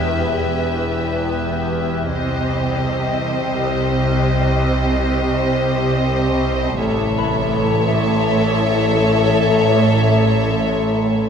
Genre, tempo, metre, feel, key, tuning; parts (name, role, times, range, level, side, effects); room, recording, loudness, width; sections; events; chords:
cinematic; free time; A4 = 440 Hz
warm symphonic violin section; melody; 0.0-11.3 s; Eb5 to E5; -24 LUFS; left 4 dB
rich symphonic violin section; second line; 0.0-11.3 s; G4 to C#5; -21 LUFS; left 4 dB
clear symphonic double bass section; bass; 0.0-11.3 s; E1 to C2; -23 LUFS; right 2 dB
warm symphonic cello section; bass; 0.0-11.3 s; E2 to C3; -22 LUFS; right 2 dB
overtone-sweeping drone; drone; 0.0-11.3 s; A1 to E2; -23 LUFS; right 1 dB; chorus, built-in reverb, phaser
concert harp; texture; 0.0-2.2, 7.2-11.1 s; B4 to B5; -29 LUFS; left 3 dB
moderate scoring stage reverb, RT60 1.9 s; minimal, uncompressed stereo recording; -15 LUFS; side -7 dB against mid
0.0-11.3 A section
0.0 Em; 2.1 Cm; 6.8 A